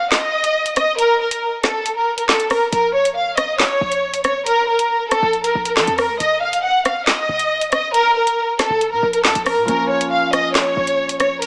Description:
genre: hip hop, drill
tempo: 138 BPM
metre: 4/4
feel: half-time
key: Bb harmonic minor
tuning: A4 = 440 Hz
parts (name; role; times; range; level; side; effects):
- warm studio violin section; melody; 0.0-11.5 s; A4 to Gb5; -19 LUFS; equal; low-pass filter
- drill drum kit; drums; 0.1-11.5 s; handclaps, hi-hat, rim click, snare drum; -21 LUFS; equal; none
- short 808-style bass; bass; 2.7-11.5 s; Eb1 to F3; -33 LUFS; equal; none
- Celtic harp; accompaniment; 9.7-11.5 s; F3 to F4; -26 LUFS; equal; low-pass filter
room: light reverb, small room reverb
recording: small speaker sound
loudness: -18 LUFS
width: mono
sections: 0.0-11.5 A section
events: break 0.0-2.7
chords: 0.0 N.C.; 2.7 Bbm; 6.2 Eb5; 9.7 Bbm

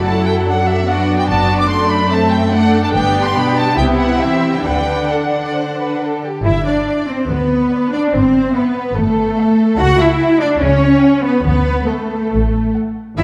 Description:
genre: quick classical-period movement for string orchestra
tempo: 132-149 BPM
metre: 4/4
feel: rubato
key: unclear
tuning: A4 = 443 Hz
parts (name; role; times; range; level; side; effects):
- warm symphonic violin section; second line; 0.0-13.2 s; F#4 to G5; -24 LUFS; equal; none
- clear symphonic viola section; accompaniment; 0.0-13.2 s; F#3 to F#4; -21 LUFS; equal; none
- rich symphonic cello section; bass; 0.0-13.2 s; F#2 to F#4; -19 LUFS; equal; none
- rich symphonic double bass section; bass; 0.0-13.2 s; F#1 to D2; -22 LUFS; equal; none
- warm symphonic violin section; melody; 0.1-13.1 s; D5 to D6; -22 LUFS; equal; none
room: wet concert hall reverb, RT60 1.9 s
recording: none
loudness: -15 LUFS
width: mono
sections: 0.0-6.5 A section; 6.5-13.2 B section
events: none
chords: 0.0 D/F#; 1.3 D7/F#; 2.9 G; 3.8 Cmaj7; 4.7 D; 6.5 G; 8.1 Am/G; 9.8 Em13/C#; 11.5 D

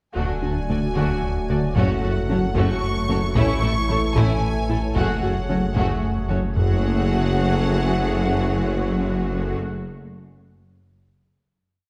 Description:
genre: cinematic, hybrid orchestral and electronic film score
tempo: 75 BPM (dotted quarters)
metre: 6/8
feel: straight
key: F# minor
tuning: A4 = 441 Hz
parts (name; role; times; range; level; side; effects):
- clear symphonic viola section; accompaniment; 0.1-9.6 s; A3 to F#4; -32 LUFS; equal; none
- warm symphonic violin section; melody; 0.2-9.6 s; F#5 to C#6; -33 LUFS; equal; none
- rich studio violin section; second line; 0.2-9.5 s; C#4 to D5; -35 LUFS; equal; none
- mellow French horn section; sustained chords; 0.2-9.6 s; A3 to G#4; -33 LUFS; equal; none
- sweeping resonant pad; sustained chords; 0.2-9.6 s; E3 to D5; -33 LUFS; equal; chorus
- tight sequenced synth; arpeggios; 0.2-6.5 s; D3 to A4; -35 LUFS; equal; none
- smooth gliding synth bass; riff; 0.2-6.5 s; D2 to A3; -29 LUFS; equal; none
- clear symphonic double bass section; bass; 0.2-9.6 s; F#1 to D2; -32 LUFS; equal; none
- pure sine sub bass; bass; 0.2-9.6 s; D1 to A1; -31 LUFS; equal; none
- rich symphonic cello section; bass; 0.2-9.6 s; D2 to A2; -32 LUFS; equal; none
- warm tuba; bass; 0.2-9.6 s; F#1 to D2; -31 LUFS; equal; none
- solo taiko drums; drums; 0.2-6.7 s; none; -29 LUFS; equal; none
room: wet scoring stage reverb, RT60 1.6 s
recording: heard from further back in the room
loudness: -22 LUFS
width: mono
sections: 0.2-6.6 theme; 6.6-9.8 final chord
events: none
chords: 0.2 D; 1.8 F#m; 3.4 A; 5.0 F#madd9

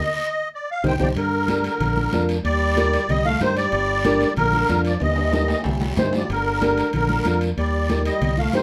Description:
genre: latin, cumbia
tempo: 187 BPM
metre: 4/4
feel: straight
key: G minor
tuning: A4 = 440 Hz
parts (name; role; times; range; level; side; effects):
- musette accordion; melody; 0.0-8.6 s; Bb4 to G5; -25 LUFS; equal; none
- warm trombone; second line; 0.8-8.6 s; D3 to A3; -31 LUFS; equal; none
- flamenco guitar; accompaniment; 0.8-8.6 s; D4 to C5; -26 LUFS; equal; none
- fingered electric bass; bass; 0.8-8.6 s; G1 to G2; -26 LUFS; equal; none
- congas; percussion; 0.8-8.6 s; none; -30 LUFS; equal; none
- guiro; percussion; 0.8-8.6 s; none; -40 LUFS; equal; none
- timbales; percussion; 1.2-8.6 s; none; -35 LUFS; equal; none
room: moderate studio reverb, RT60 0.6 s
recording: none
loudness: -21 LUFS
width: mono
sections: 0.0-1.2 A section; 1.2-8.6 A section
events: drum fill 0.0-1.2, 5.0-6.3; band accent 0.0-1.2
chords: 0.0 N.C.; 0.5 Cm; 1.2 Gm; 1.8 Bb; 2.4 Eb; 3.1 Cm; 3.7 Gm; 4.4 Bb; 5.0 Eb; 5.7 Cm; 6.3 Gm; 6.9 Bb; 7.6 Eb

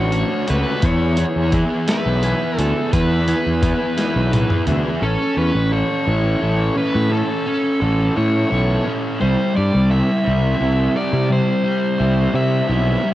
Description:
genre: indie rock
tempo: 57 BPM (dotted quarters)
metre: 6/8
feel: straight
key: unclear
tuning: A4 = 440 Hz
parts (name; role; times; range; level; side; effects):
- overdriven electric guitar; melody; 0.0-13.1 s; A4 to E5; -24 LUFS; equal; cassette tape
- fuzz guitar; riff; 0.0-13.1 s; E3 to A4; -20 LUFS; equal; distortion, cassette tape
- fuzz fingered electric bass; bass; 0.0-13.0 s; A1 to C3; -19 LUFS; equal; overdrive
- boom bap sampler-style drum kit; drums; 0.1-4.8 s; hi-hat, kick drum, snare drum, toms; -21 LUFS; equal; none
room: digital ambience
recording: home recording on cassette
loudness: -16 LUFS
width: side -14 dB against mid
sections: 0.0-5.0 A section; 5.0-13.1 B section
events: drum fill 4.0-5.0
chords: 0.0 Dmaj7; 0.8 E; 5.0 A; 9.2 C

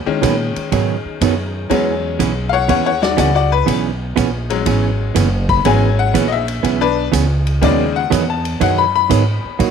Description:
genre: country, western swing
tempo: 122 BPM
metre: 4/4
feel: swing 67% on 8ths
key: B major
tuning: A4 = 441 Hz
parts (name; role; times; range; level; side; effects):
- upright bass; bass; 0.0-9.7 s; F#1 to A#2; -19 LUFS; right 1 dB; none
- tack piano; accompaniment; 0.1-9.6 s; C#3 to B5; -18 LUFS; left 10 dB; none
- hollow-body jazz guitar; accompaniment; 0.2-9.7 s; B2 to G#4; -19 LUFS; right 12 dB; none
- swinging big-band drum kit; drums; 0.2-9.7 s; hi-hat, kick drum, ride cymbal, snare drum; -25 LUFS; equal; none
room: light reverb, studio ambience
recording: 1960s-style stereo with parts hard left and right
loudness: -14 LUFS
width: side -7 dB against mid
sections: 0.0-9.7 A section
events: honky-tonk piano solo 0.0-9.7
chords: 0.0 B6; 1.7 E6; 7.6 B6

